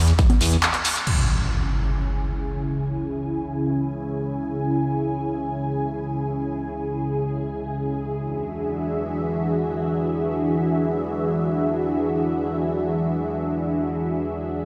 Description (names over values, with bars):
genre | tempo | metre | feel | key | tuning
uplifting trance | free time | none | none | unclear | A4 = 440 Hz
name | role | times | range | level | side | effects
fat analog bass | bass | 0.0-0.6 s | E2 | -20 LUFS | equal | tube saturation, sidechain pumping
punchy analog drum machine | drums | 0.1-1.2 s | congas, crash cymbal, handclaps, hi-hat | -27 LUFS | equal | overdrive, studio reverb
shekere | percussion | 0.1-1.1 s | none | -31 LUFS | equal | none
lush unison pad | sustained chords | 1.1-14.7 s | C#3 to G#5 | -26 LUFS | equal | chorus, phaser, sidechain pumping
impact | sound effects | 1.1-2.8 s | none | -27 LUFS | equal | none
room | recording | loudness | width
moderate huge ambient reverb, RT60 4.5 s | played on a big sound system in a bare room, stone room reverb | -24 LUFS | mono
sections
0.0-1.1 A section; 1.1-14.7 B section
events
break 0.6-1.1; band accent 0.6; impact 1.1-2.8; filter sweep on analog synth pad 1.1-14.7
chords
0.0 N.C.; 1.1 C#m; 8.1 E7